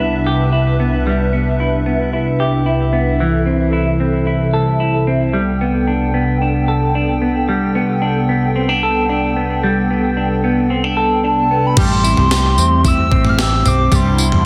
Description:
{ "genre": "dream pop", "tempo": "112 BPM", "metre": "4/4", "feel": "straight", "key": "unclear", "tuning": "A4 = 440 Hz", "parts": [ { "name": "hollow soft pad", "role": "sustained chords", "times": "0.0-14.5 s", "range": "C2 to G5", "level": "-20 LUFS", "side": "equal", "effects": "ensemble chorus" }, { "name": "semi-hollow electric guitar", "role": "arpeggios", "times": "0.0-14.5 s", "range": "E3 to A4", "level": "-20 LUFS", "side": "equal", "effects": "lush chorus, delay" }, { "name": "hollow clarinet-like synth lead", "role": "melody", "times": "11.3-14.5 s", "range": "A5 to F6", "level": "-20 LUFS", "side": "equal", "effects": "chorus, phaser, delay" }, { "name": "vintage muted fingered electric bass", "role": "bass", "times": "11.8-14.5 s", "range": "A1 to E2", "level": "-19 LUFS", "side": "equal", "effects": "none" }, { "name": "gated 80s digital drum machine", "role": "drums", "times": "11.8-14.4 s", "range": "crash cymbal, kick drum, snare drum, tambourine, toms", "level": "-18 LUFS", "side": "equal", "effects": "gated reverb, gated reverb snare" } ], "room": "moderate studio reverb, RT60 0.5 s", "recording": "dense, heavily limited modern master", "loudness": "-16 LUFS", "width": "mono", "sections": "0.0-11.8 A section; 11.8-14.5 B section", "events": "none", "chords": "0.0 Cmaj7; 3.2 Am/C; 5.3 Gadd9/C; 11.8 Am7; 13.9 Cmaj7", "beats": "0.52 | 1.06 1.59 2.13 2.66 | 3.20 3.73 4.27 4.81 | 5.34 5.88 6.41 6.95 | 7.48 8.02 8.56 9.09 | 9.63 10.16 10.70 11.23 | 11.77 12.31 12.84 13.38 | 13.91 14.45" }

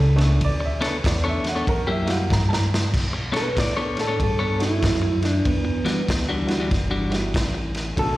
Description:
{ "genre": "electric blues shuffle", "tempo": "95 BPM", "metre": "4/4", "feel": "swing 63% on 8ths", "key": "B minor", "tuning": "A4 = 440 Hz", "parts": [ { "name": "warm upright piano", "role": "accompaniment", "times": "0.0-8.2 s", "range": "G3 to A#5", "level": "-28 LUFS", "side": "right 2 dB", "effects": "slapback echo" }, { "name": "upright bass", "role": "bass", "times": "0.0-8.2 s", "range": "G1 to B2", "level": "-23 LUFS", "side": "equal", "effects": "none" }, { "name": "crunchy breakbeat drum kit", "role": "drums", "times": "0.2-8.2 s", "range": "crash cymbal, kick drum, ride cymbal, snare drum", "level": "-25 LUFS", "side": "equal", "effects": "none" }, { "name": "clean electric guitar", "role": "riff", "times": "0.6-7.6 s", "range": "E3 to C#5", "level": "-26 LUFS", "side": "left 2 dB", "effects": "slapback echo" }, { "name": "electric guitar through a small old amp", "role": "melody", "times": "3.4-8.2 s", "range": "B3 to D5", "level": "-25 LUFS", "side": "right 1 dB", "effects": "slapback echo" } ], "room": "small room ambience", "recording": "live gig heard through the venue's PA, recital hall reverb", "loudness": "-20 LUFS", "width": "side -16 dB against mid", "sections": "0.0-2.9 A section; 2.9-8.2 A section", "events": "drum fill 2.3-2.9; clean electric guitar solo 2.9-8.2", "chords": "0.0 Bm9; 1.7 F#7b9; 2.9 Bm9; 5.5 Em9", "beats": "| 0.41 1.04 1.67 2.30 | 2.93 3.56 4.19 4.82 | 5.45 6.08 6.71 7.34 | 7.97" }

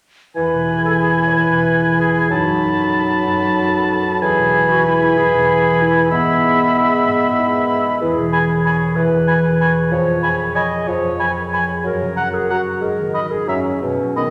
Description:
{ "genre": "classical", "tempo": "187 BPM", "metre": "3/4", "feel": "uneven beats, rubato", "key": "E major", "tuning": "A4 = 440 Hz", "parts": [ { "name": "clear oboe", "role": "second line", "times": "0.4-14.3 s", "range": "D#5 to A5", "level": "-22 LUFS", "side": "equal", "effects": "none" }, { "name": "silver concert flute", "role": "second line", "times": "0.4-14.2 s", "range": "A#5 to B5", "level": "-26 LUFS", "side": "equal", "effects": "none" }, { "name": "warm clarinet", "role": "second line", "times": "0.4-14.3 s", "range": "B3 to D#5", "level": "-24 LUFS", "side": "equal", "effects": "none" }, { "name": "dark bassoon", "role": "accompaniment", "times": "0.4-14.3 s", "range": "B2 to G#3", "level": "-23 LUFS", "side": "equal", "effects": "none" }, { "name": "concert harp", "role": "arpeggios", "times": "0.4-14.3 s", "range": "E2 to C#5", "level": "-23 LUFS", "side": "equal", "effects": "none" } ], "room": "wet scoring stage reverb, RT60 1.8 s", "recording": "none", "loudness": "-17 LUFS", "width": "mono", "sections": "0.4-14.3 A section", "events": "none", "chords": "0.4 E; 2.3 B7/F#; 4.2 E; 6.1 E/G#; 8.0 C#m7/E; 9.9 C#7/E#; 11.8 F#; 12.8 G#5; 13.5 F#7sus2", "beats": "| 0.36 0.69 1.02 | 1.33 1.66 1.99 | 2.31 2.62 2.95 | 3.26 3.58 3.91 | 4.22 4.53 4.86 | 5.17 5.48 5.81 | 6.12 6.43 6.76 | 7.07 7.38 7.70 | 8.01 8.32 8.65 | 8.96 9.28 9.61 | 9.92 10.23 10.56 | 10.88 11.20 11.53 | 11.85 12.17 12.50 | 12.82 13.14 13.48 | 13.82 14.16" }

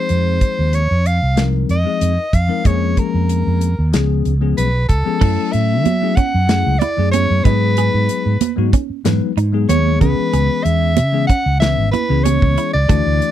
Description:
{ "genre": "electric jazz fusion", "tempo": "94 BPM", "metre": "4/4", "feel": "straight", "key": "F# minor from 5.2 s", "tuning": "A4 = 440 Hz", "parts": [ { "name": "clear soprano saxophone", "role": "melody", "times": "0.0-13.3 s", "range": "A4 to F#5", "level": "-20 LUFS", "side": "equal", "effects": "slapback echo" }, { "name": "bell-like tine electric piano", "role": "accompaniment", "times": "0.0-13.3 s", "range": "E3 to B4", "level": "-21 LUFS", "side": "left 13 dB", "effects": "lush chorus" }, { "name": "mellow fretless electric bass", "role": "bass", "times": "0.1-13.2 s", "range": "G#1 to F#3", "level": "-16 LUFS", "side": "right 1 dB", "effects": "none" }, { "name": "modern studio drum kit", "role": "drums", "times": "0.1-13.3 s", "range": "crash cymbal, hi-hat, kick drum, snare drum", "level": "-17 LUFS", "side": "equal", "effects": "none" }, { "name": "clean electric guitar", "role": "stabs", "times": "5.2-13.2 s", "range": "B3 to A4", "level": "-25 LUFS", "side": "right 18 dB", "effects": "lush chorus" }, { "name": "congas", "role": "percussion", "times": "5.2-13.3 s", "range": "none", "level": "-22 LUFS", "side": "right 15 dB", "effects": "none" } ], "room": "little or no reverb", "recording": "dry, close 1970s-style studio recording", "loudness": "-13 LUFS", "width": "side -11 dB against mid", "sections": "0.0-5.2 A section; 5.2-13.3 B section", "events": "none", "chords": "0.0 Fm7; 2.7 Bbm7/F; 3.9 Db7; 5.2 F#m9; 7.5 G#m7; 10.0 C#m7", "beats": "| 0.09 0.73 1.38 2.02 | 2.65 3.29 3.94 4.58 | 5.21 5.85 6.49 7.13 | 7.77 8.41 9.05 9.69 | 10.33 10.97 11.61 12.25 | 12.89" }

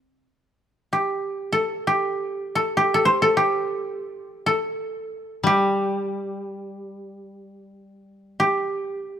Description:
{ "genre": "japanese traditional, Japanese chamber music", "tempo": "free time", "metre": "none", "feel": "none", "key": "unclear", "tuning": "A4 = 442 Hz", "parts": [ { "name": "koto", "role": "melody", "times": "0.0-9.2 s", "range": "C4 to C5", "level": "-21 LUFS", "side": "equal", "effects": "none" }, { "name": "koto", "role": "accompaniment", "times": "5.4-8.6 s", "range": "G3", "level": "-26 LUFS", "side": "left 3 dB", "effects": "none" } ], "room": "light reverb", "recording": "close, detailed microphones", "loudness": "-21 LUFS", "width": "side -9 dB against mid", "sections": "0.2-9.2 A section", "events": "none", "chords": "none", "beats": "free time" }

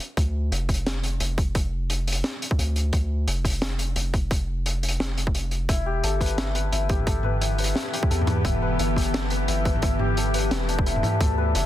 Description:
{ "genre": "half-time drum and bass", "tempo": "174 BPM", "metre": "4/4", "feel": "swing 56% on 16ths, half-time", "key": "E phrygian", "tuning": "A4 = 440 Hz", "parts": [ { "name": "crunchy breakbeat drum kit", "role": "drums", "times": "0.0-11.6 s", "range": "hi-hat, snare drum, toms", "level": "-28 LUFS", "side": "equal", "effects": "none" }, { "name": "long sustained 808-style bass", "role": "bass", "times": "0.2-11.7 s", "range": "E1 to E2", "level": "-26 LUFS", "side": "equal", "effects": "none" }, { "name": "electronic kick drum", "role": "drums", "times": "0.2-11.3 s", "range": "none", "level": "-24 LUFS", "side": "equal", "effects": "overdrive" }, { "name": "bowed-like drone", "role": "sustained chords", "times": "6.7-11.7 s", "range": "D3 to G4", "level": "-30 LUFS", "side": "equal", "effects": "built-in reverb, sidechain pumping" }, { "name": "santur", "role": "arpeggios", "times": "5.7-11.7 s", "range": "D4 to B4", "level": "-28 LUFS", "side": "left 4 dB", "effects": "ping-pong delay" } ], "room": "light reverb, studio reverb", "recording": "dense, heavily limited modern master", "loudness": "-22 LUFS", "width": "side -13 dB against mid", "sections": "0.0-11.7 A section", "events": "none", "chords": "0.2 Dm; 5.7 Em", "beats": "| 0.17 0.52 0.86 1.21 | 1.55 1.90 2.24 2.59 | 2.93 3.28 3.62 3.96 | 4.31 4.66 5.00 5.34 | 5.69 6.03 6.38 6.72 | 7.07 7.41 7.76 8.10 | 8.45 8.79 9.14 9.48 | 9.83 10.17 10.52 10.86 | 11.21 11.55" }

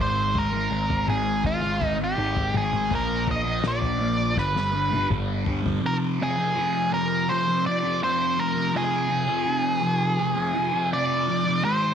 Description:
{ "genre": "psychedelic rock", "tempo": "82 BPM", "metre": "4/4", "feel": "straight", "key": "unclear", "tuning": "A4 = 440 Hz", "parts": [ { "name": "octave-fuzz lead guitar", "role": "melody", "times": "0.0-11.9 s", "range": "F4 to Eb5", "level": "-25 LUFS", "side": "right 1 dB", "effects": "distortion, slapback echo" }, { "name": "thick fuzz guitar", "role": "riff", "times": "0.0-11.9 s", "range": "F2 to Bb3", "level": "-26 LUFS", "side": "left 1 dB", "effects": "distortion, phaser" }, { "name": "growling picked electric bass", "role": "bass", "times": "0.0-5.8 s", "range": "G1 to Bb1", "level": "-29 LUFS", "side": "equal", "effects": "overdrive" }, { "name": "cloth-damped thuddy drum kit", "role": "drums", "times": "0.3-5.8 s", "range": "kick drum, snare drum, toms", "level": "-29 LUFS", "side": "left 3 dB", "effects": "none" } ], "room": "light reverb, small room reverb", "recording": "1960s-style stereo", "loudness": "-22 LUFS", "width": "side -8 dB against mid", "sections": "0.0-5.8 A section; 5.8-11.9 B section", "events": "drum fill 4.4-5.8", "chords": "0.0 Ab5; 2.9 Bb; 4.4 G; 5.8 Fm", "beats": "0.71 1.45 2.17 | 2.90 3.63 4.37 5.09 | 5.82 6.55 7.28 8.01 | 8.73 9.46 10.19 10.92 | 11.64" }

